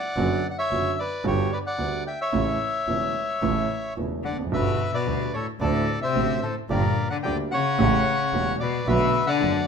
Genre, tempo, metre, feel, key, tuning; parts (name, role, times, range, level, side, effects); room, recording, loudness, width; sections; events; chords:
tango; 110 BPM; 4/4; rubato; A4 = 438 Hz
bandoneon; melody; 0.0-9.7 s; G4 to G5; -26 LUFS; left 2 dB
warm grand piano; accompaniment; 0.2-9.6 s; E1 to G4; -27 LUFS; right 4 dB
clear double bass; bass; 0.2-9.6 s; E1 to D2; -30 LUFS; right 1 dB
rich cello; second line; 4.2-9.6 s; A2 to D3; -26 LUFS; left 6 dB
moderate large studio reverb, RT60 0.8 s; minimal, uncompressed stereo recording; -22 LUFS; side -6 dB against mid
0.0-9.7 A section
0.2 Bm/F#; 1.2 Gmaj7; 2.3 A; 4.5 Gmaj7; 5.6 D7; 6.7 Gm; 7.8 A7; 8.9 Bm7